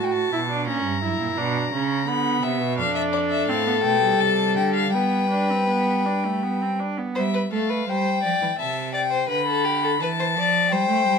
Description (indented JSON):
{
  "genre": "classical, baroque-style fugue for string quartet",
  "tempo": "85 BPM",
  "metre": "3/4",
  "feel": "straight",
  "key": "C major",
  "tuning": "A4 = 439 Hz",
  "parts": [
    { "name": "warm violin", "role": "melody", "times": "0.0-11.2 s", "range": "D5 to B5", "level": "-24 LUFS", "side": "left 6 dB", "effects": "none" },
    { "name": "warm viola", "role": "accompaniment", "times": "0.0-7.2 s", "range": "G3 to F#4", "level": "-26 LUFS", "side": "right 3 dB", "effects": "none" },
    { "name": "rich cello", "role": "bass", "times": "0.0-11.2 s", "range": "F2 to A3", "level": "-26 LUFS", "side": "right 5 dB", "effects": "none" },
    { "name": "rich violin", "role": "second line", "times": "2.8-11.2 s", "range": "G4 to E5", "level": "-24 LUFS", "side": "left 4 dB", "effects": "none" }
  ],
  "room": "moderate large studio reverb, RT60 0.8 s",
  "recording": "minimal, uncompressed stereo recording",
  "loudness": "-20 LUFS",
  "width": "side -6 dB against mid",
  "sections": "0.0-7.2 A section; 7.2-11.2 B section",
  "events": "none",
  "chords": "0.0 A5; 0.7 F#7; 2.1 Bm/D; 2.8 Dm7/F; 4.9 G; 7.2 C/G; 8.6 C; 9.3 Bdim/D",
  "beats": "| 0.68 1.37 2.07 | 2.78 3.48 4.19 | 4.93 5.67 6.42 | 7.16 7.89 8.60 | 9.30 10.01 10.72"
}